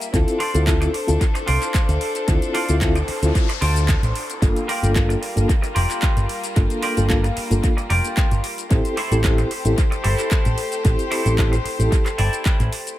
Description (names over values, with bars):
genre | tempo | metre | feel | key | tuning
nu-disco, nu disco | 112 BPM | 4/4 | straight | unclear | A4 = 440 Hz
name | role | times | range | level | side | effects
rich chamber violin section | sustained chords | 0.0-13.0 s | G3 to E5 | -28 LUFS | left 2 dB | sidechain pumping
house drum kit | drums | 0.0-13.0 s | handclaps, hi-hat, shaker | -29 LUFS | equal | studio reverb, analog delay
mellow reed electric piano | accompaniment | 0.1-12.0 s | Bb3 to A4 | -25 LUFS | left 1 dB | fast tremolo, analog delay
picked electric bass with an envelope filter | bass | 0.1-12.7 s | F1 to D2 | -20 LUFS | equal | none
electronic kick drum | drums | 0.1-12.6 s | none | -19 LUFS | equal | studio reverb
semi-hollow electric guitar | riff | 0.4-12.7 s | E4 to D5 | -28 LUFS | equal | lush chorus, analog delay
noise sweep | sound effects | 2.8-4.4 s | none | -34 LUFS | left 2 dB | none
room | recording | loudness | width
light reverb | echo-heavy mix | -17 LUFS | side -14 dB against mid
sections
0.0-13.0 A section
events
noise sweep 2.8-4.4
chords
0.1 Dm7; 4.4 Gm7; 8.7 Am7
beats
| 0.14 0.67 1.21 1.74 | 2.28 2.81 3.35 3.89 | 4.42 4.96 5.49 6.03 | 6.56 7.10 7.64 8.17 | 8.71 9.24 9.78 10.31 | 10.85 11.39 11.92 12.46